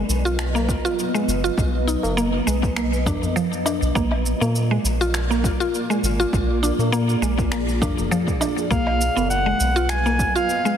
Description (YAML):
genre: organic downtempo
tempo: 101 BPM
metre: 4/4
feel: swing 55% on 16ths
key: unclear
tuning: A4 = 442 Hz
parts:
  - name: granular cloud pad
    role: sustained chords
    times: 0.0-10.8 s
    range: F#3 to D#5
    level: -27 LUFS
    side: right 1 dB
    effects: built-in reverb, sidechain pumping
  - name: mallet-like synth pluck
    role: arpeggios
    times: 0.0-10.8 s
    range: F3 to F4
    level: -23 LUFS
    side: equal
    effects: chorus, ping-pong delay
  - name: round analog bass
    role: bass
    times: 0.0-10.3 s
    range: F1 to Bb2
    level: -23 LUFS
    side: equal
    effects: sidechain pumping
  - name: electronic shaker, finger snaps and woodblock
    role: drums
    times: 0.1-10.8 s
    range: none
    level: -30 LUFS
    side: equal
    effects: overdrive, small room ambience
  - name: tabla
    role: percussion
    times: 0.6-10.2 s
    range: none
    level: -32 LUFS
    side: left 1 dB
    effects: none
  - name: electronic kick drum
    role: drums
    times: 0.7-10.3 s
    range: none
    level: -24 LUFS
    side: equal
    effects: overdrive, small room ambience
  - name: warm clarinet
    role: melody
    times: 8.7-10.8 s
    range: F5 to Ab5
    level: -22 LUFS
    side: equal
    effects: ping-pong delay
room: moderate lush hall reverb, RT60 2.1 s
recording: heavily compressed radio sound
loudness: -18 LUFS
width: side -9 dB against mid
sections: 0.0-10.8 A section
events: none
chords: 0.0 Bmaj7; 4.0 Bb7; 8.7 Bmaj7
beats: 0.39 0.98 | 1.58 2.17 2.77 3.36 | 3.96 4.55 5.14 5.74 | 6.33 6.92 7.52 8.11 | 8.71 9.30 9.89 10.49